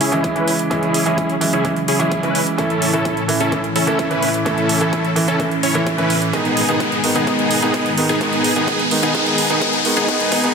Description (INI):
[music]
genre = EDM, festival progressive house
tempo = 128 BPM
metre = 4/4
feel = straight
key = unclear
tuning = A4 = 440 Hz
[part]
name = lush unison pad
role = sustained chords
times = 0.0-10.5 s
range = E2 to E4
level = -25 LUFS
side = left 1 dB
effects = chorus, sidechain pumping
[part]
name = dense compressed supersaw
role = riff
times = 0.0-10.5 s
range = B3 to C#5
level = -19 LUFS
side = left 1 dB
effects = sidechain pumping, low-pass filter, tape echo
[part]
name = electronic hi-hat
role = drums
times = 0.0-10.5 s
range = none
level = -24 LUFS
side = right 3 dB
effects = none
[part]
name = riser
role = sound effects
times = 1.7-10.5 s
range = none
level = -24 LUFS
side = left 2 dB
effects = none
[part]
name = felt-muted upright piano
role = accompaniment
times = 0.1-10.5 s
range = D#3 to E4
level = -20 LUFS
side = right 2 dB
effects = sidechain pumping, tape echo
[part]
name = electronic kick drum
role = drums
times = 0.2-10.4 s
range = none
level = -28 LUFS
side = left 1 dB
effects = high-pass filter on kick, high-pass filter on room
[sound]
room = moderate lush hall reverb, RT60 2.0 s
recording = dense, heavily limited modern master, high-pass filter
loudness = -15 LUFS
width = side -5 dB against mid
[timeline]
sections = 0.0-10.5 A section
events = build-up 0.0-10.5; filter sweep on supersaw synth 0.0-10.5; filter sweep on analog synth pad 0.0-10.5; filter sweep 0.0-10.5; riser 1.7-10.5; drum fill 6.3-10.5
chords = 0.0 C#m; 2.6 A; 6.3 G#m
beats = 0.24 | 0.71 1.18 1.65 2.12 | 2.58 3.05 3.52 3.99 | 4.46 4.93 5.40 5.87 | 6.33 6.80 7.27 7.74 | 8.21 8.68 9.15 9.62 | 10.09